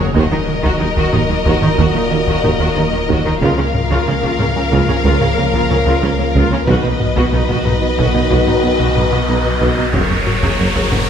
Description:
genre	cinematic, hybrid orchestral and electronic film score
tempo	92 BPM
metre	5/4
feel	straight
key	Bb phrygian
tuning	A4 = 441 Hz
part	warm symphonic violin section	melody	0.0-11.1 s	Db5 to F5	-23 LUFS	left 4 dB	none
part	warm symphonic violin section	second line	0.0-11.1 s	Bb4 to B4	-23 LUFS	left 3 dB	none
part	warm studio viola section	accompaniment	0.0-11.0 s	Bb3 to Ab4	-24 LUFS	equal	none
part	dark trombone section	sustained chords	0.0-11.1 s	Bb2 to Gb3	-25 LUFS	right 3 dB	none
part	mellow French horn section	sustained chords	0.0-11.1 s	Bb3 to Bb4	-26 LUFS	left 4 dB	none
part	shimmering ambient pad	sustained chords	0.0-11.1 s	F3 to F5	-27 LUFS	left 1 dB	none
part	resonant blip pluck	arpeggios	0.0-11.0 s	Eb3 to B4	-27 LUFS	left 2 dB	none
part	plucky analog bass	riff	0.0-11.0 s	Db2 to B3	-22 LUFS	right 2 dB	none
part	dark symphonic cello section	bass	0.0-11.0 s	Gb2 to Eb3	-23 LUFS	right 3 dB	none
part	punchy sub bass	bass	0.0-11.1 s	Eb1 to Db2	-23 LUFS	left 1 dB	none
part	rich symphonic double bass section	bass	0.2-11.0 s	Gb1 to Eb2	-22 LUFS	right 3 dB	none
part	warm tuba	bass	0.2-11.0 s	Gb1 to Eb2	-23 LUFS	right 3 dB	none
part	taiko ensemble	drums	0.2-11.1 s	none	-21 LUFS	left 1 dB	none
part	riser	sound effects	8.4-11.1 s	none	-23 LUFS	right 2 dB	none
room	moderate concert hall reverb, RT60 2.0 s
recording	none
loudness	-12 LUFS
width	side -8 dB against mid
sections	0.0-11.1 A section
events	drum fill 0.0; riser 8.4-11.1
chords	0.2 Ebm; 3.4 Bbm/Db; 6.7 B; 9.9 Gbadd9

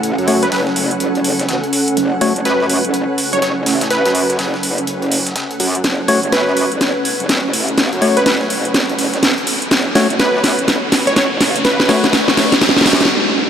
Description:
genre	bass house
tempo	124 BPM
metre	4/4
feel	swing 62% on 16ths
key	F# minor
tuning	A4 = 439 Hz
part	metallic wobble bass	bass	0.0-13.1 s	E1 to F#2	-22 LUFS	equal	chorus, tube saturation, high-pass filter
part	breakbeat sampler-style drum kit	drums	0.0-13.0 s	hi-hat, snare drum	-26 LUFS	equal	high-pass filter on hats, high-pass filter on snare
part	house drum kit	drums	0.0-13.1 s	hi-hat, snare drum	-15 LUFS	equal	none
part	granular cloud pad	texture	0.0-13.1 s	C#4 to F#5	-21 LUFS	right 2 dB	built-in reverb, ensemble chorus
part	percussive organ stab	stabs	0.3-2.3, 6.1-12.1 s	A3 to C#5	-20 LUFS	left 2 dB	chorus, diffuse ambient delay
part	plucky unison lead	melody	0.4-12.1 s	B4 to C#5	-20 LUFS	equal	diffuse ambient delay
part	riser	sound effects	8.9-13.1 s	none	-24 LUFS	equal	none
room	wet huge ambient reverb, RT60 5.2 s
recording	dreamy mix soaked in reverb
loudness	-12 LUFS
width	side -8 dB against mid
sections	0.0-13.5 A section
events	build-up 0.0-13.5; drum fill 5.8-13.1; riser 8.9-13.1; break 13.1-13.5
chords	0.0 F#m

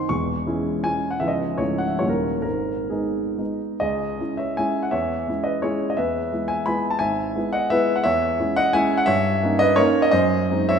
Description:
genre	classical, romantic triple-time dance for piano with dotted rhythms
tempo	122-185 BPM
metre	3/4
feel	rubato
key	G# minor, C# minor from 3.8 s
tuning	A4 = 440 Hz
part	warm grand piano	solo	0.0-10.8 s	C#1 to C#6	-20 LUFS	equal	none
room	wet concert hall reverb, RT60 1.8 s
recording	recorded in a church or concert hall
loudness	-20 LUFS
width	side -7 dB against mid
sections	0.0-3.8 A section; 3.8-10.8 B section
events	none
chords	0.1 C#m/E; 1.2 C#m7; 1.6 A/C#; 2.0 D#7b9; 2.5 G#m; 3.8 C#m; 4.9 C#m/E; 6.0 E; 7.0 E/G#; 8.0 C#m/E; 9.1 D#7/G; 10.1 G#7/F#

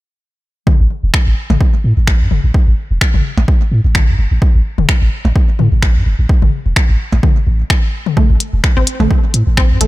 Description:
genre	minimal techno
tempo	128 BPM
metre	4/4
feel	swing 55% on 16ths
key	A minor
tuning	A4 = 440 Hz
part	electronic kick drum	drums	0.7-9.7 s	none	-12 LUFS	equal	overdrive
part	electronic toms and percussion blips	percussion	0.7-9.9 s	none	-20 LUFS	left 5 dB	overdrive, digital delay
part	punchy sub bass	bass	0.8-9.9 s	E1 to A2	-13 LUFS	equal	sidechain pumping
part	minimal click drum kit	drums	1.1-9.9 s	finger snaps, hi-hat	-19 LUFS	equal	none
part	resonant blip pluck	riff	8.2-9.9 s	A3 to C4	-20 LUFS	right 2 dB	chorus, vintage 12-bit sampler grit, sidechain pumping, ping-pong delay
room	digital ambience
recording	none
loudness	-11 LUFS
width	side -18 dB against mid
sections	0.7-9.9 A section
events	none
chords	0.7 A5

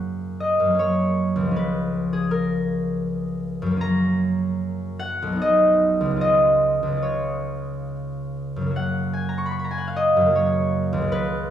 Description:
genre	classical, solo harp piece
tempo	63-83 BPM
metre	3/4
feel	rubato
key	F# major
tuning	A4 = 440 Hz
part	concert harp	solo	0.0-11.5 s	B1 to C#6	-20 LUFS	equal	none
room	wet recital hall reverb, RT60 1.5 s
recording	heard from further back in the room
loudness	-20 LUFS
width	side -10 dB against mid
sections	0.0-11.5 A section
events	none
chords	0.0 F#; 1.6 C#7; 3.8 F#; 5.4 B; 6.2 C#; 8.8 F#

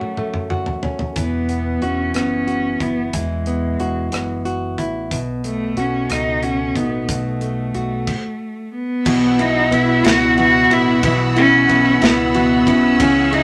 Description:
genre	six-eight pop ballad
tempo	61 BPM (dotted quarters)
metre	6/8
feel	straight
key	unclear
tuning	A4 = 440 Hz
part	warm cello	melody	0.0-13.4 s	G#3 to F#4	-21 LUFS	equal	none
part	nylon-string guitar	accompaniment	0.0-13.4 s	F#2 to F#4	-22 LUFS	equal	none
part	modern studio drum kit	drums	0.0-13.4 s	crash cymbal, hi-hat, kick drum, ride cymbal, rim click, snare drum, toms	-27 LUFS	equal	none
part	deep dub fingered electric bass	bass	1.2-13.4 s	E1 to C#2	-29 LUFS	equal	none
part	rich studio string section	sustained chords	9.1-13.4 s	F#4 to E6	-27 LUFS	equal	none
part	picked steel-string acoustic guitar	arpeggios	9.1-13.4 s	B2 to G#4	-24 LUFS	equal	none
room	moderate studio reverb, RT60 0.6 s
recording	none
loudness	-18 LUFS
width	mono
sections	0.0-9.1 A section; 9.1-13.4 B section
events	drum fill 0.0-1.2; stop 8.1-9.1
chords	0.0 F#m; 1.2 Eadd9; 5.1 B7; 9.1 Bsus4

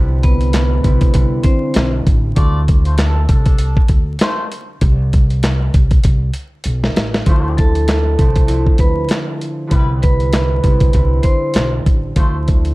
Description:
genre	hip hop, boom-bap hip-hop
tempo	98 BPM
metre	4/4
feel	swing 57% on 16ths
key	D dorian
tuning	A4 = 440 Hz
part	concert harp	accompaniment	0.0-12.7 s	C3 to E4	-24 LUFS	equal	cassette tape, high-pass filter, low-pass filter
part	upright bass	bass	0.0-12.7 s	A1 to D2	-16 LUFS	equal	none
part	vibraphone with hard mallets	melody	0.2-1.9, 7.6-11.7 s	B3 to C6	-21 LUFS	right 1 dB	high-pass filter, low-pass filter, analog delay
part	dusty soul sampler-style drum kit	drums	0.2-12.7 s	handclaps, hi-hat, kick drum, snare drum	-14 LUFS	equal	none
part	muted trumpet section	stabs	2.4-12.4 s	G3 to D5	-26 LUFS	left 2 dB	high-pass filter, low-pass filter, analog delay
room	little or no reverb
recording	dark, warm production, vinyl crackle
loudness	-12 LUFS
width	side -21 dB against mid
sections	0.0-7.3 A section; 7.3-12.7 B section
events	drum fill 6.0-7.3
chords	0.0 Cmaj7; 2.4 Dm7; 4.8 N.C.; 7.3 Dm7; 9.7 Cmaj7; 12.2 Dm7

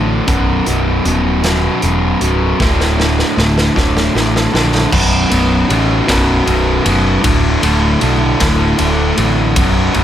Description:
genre	quiet-loud alternative rock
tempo	52 BPM (dotted quarters)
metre	6/8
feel	straight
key	unclear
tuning	A4 = 440 Hz
part	distorted electric guitar	riff	0.0-10.0 s	B1 to D3	-14 LUFS	equal	distortion
part	modern bright picked electric bass	bass	0.0-10.0 s	B0 to B1	-17 LUFS	equal	none
part	raw garage drum kit	drums	0.3-10.0 s	crash cymbal, hi-hat, kick drum, ride cymbal, snare drum	-17 LUFS	equal	none
room	studio reverb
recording	none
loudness	-11 LUFS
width	side -10 dB against mid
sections	0.0-4.9 A section; 4.9-10.0 B section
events	drum fill 2.6-4.9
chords	0.3 B; 2.6 D5; 4.9 B5; 7.2 D5

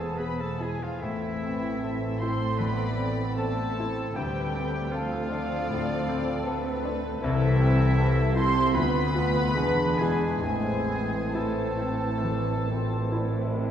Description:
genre	classical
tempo	77 BPM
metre	4/4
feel	uneven beats, rubato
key	A minor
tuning	A4 = 441 Hz
part	clear grand piano	melody	0.0-13.7 s	C2 to B4	-29 LUFS	left 2 dB	none
part	warm studio violin section	melody	0.0-13.6 s	E5 to C6	-37 LUFS	left 2 dB	none
part	bright oboe	second line	0.0-13.6 s	E4 to C5	-38 LUFS	right 1 dB	none
part	small flute group	second line	0.0-13.6 s	E5 to C6	-36 LUFS	right 3 dB	none
part	warm clarinet	second line	0.0-13.7 s	A3 to A4	-39 LUFS	left 2 dB	none
part	warm symphonic violin section	second line	0.0-13.6 s	G4 to D5	-37 LUFS	left 3 dB	none
part	dark symphonic viola section	accompaniment	0.0-13.7 s	E3 to A4	-36 LUFS	right 3 dB	none
part	mellow bassoon	accompaniment	0.0-13.7 s	E3 to C4	-37 LUFS	right 1 dB	none
part	warm French horn section	sustained chords	0.0-13.6 s	E3 to C4	-34 LUFS	left 1 dB	none
part	dark studio cello section	bass	0.0-13.7 s	C2 to A2	-34 LUFS	right 1 dB	none
part	warm symphonic double bass section	bass	0.0-13.7 s	E1 to D2	-34 LUFS	right 2 dB	none
room	wet concert hall reverb, RT60 2.3 s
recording	heard from further back in the room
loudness	-24 LUFS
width	side -9 dB against mid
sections	0.0-13.7 A section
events	none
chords	0.0 E; 1.0 Am; 4.2 Dm7; 7.2 Am/C; 8.8 Bdim/D; 9.6 E7; 10.4 Am

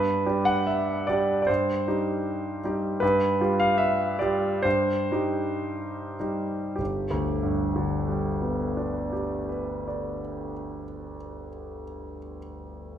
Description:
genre	classical, romantic character piece for solo piano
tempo	47-79 BPM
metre	2/4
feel	rubato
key	G major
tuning	A4 = 440 Hz
part	clear concert grand piano	solo	0.0-13.0 s	G1 to F#5	-25 LUFS	equal	none
room	wet recital hall reverb, RT60 1.6 s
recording	minimal, uncompressed stereo recording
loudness	-24 LUFS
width	side -10 dB against mid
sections	0.0-6.8 A section; 6.8-10.9 B section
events	slowing down 2.3-6.8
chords	0.0 G5; 1.5 Cm/G; 3.0 G7; 4.6 Cm/G; 6.8 G

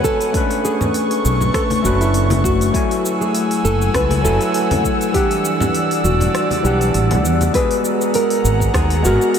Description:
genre	sunset chillout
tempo	100 BPM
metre	4/4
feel	swing 55% on 16ths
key	unclear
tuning	A4 = 440 Hz
part	nylon-string guitar	melody	0.0-9.4 s	E4 to B4	-20 LUFS	equal	ping-pong delay
part	overdriven tine electric piano	accompaniment	0.0-9.4 s	E3 to G#5	-21 LUFS	moving between left 4 dB and right 4 dB	auto-pan, ping-pong delay
part	airy breathy pad	sustained chords	0.0-9.4 s	A3 to E6	-22 LUFS	equal	chorus
part	deep house drum kit	drums	0.0-9.4 s	hi-hat, rim click, shaker	-27 LUFS	equal	studio reverb
part	electronic kick drum	drums	0.0-8.9 s	none	-22 LUFS	equal	studio reverb
part	congas	percussion	0.8-7.5 s	none	-26 LUFS	left 2 dB	none
part	mellow fretless electric bass	bass	1.2-9.2 s	E1 to E2	-17 LUFS	equal	ensemble chorus
room	wet huge ambient reverb, RT60 7.8 s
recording	dreamy mix soaked in reverb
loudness	-14 LUFS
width	side -8 dB against mid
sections	0.0-7.5 A section; 7.5-9.4 B section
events	kick drops out 6.3-7.5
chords	0.3 Bm9; 2.7 F#m9; 5.1 Em9; 7.5 G#m9

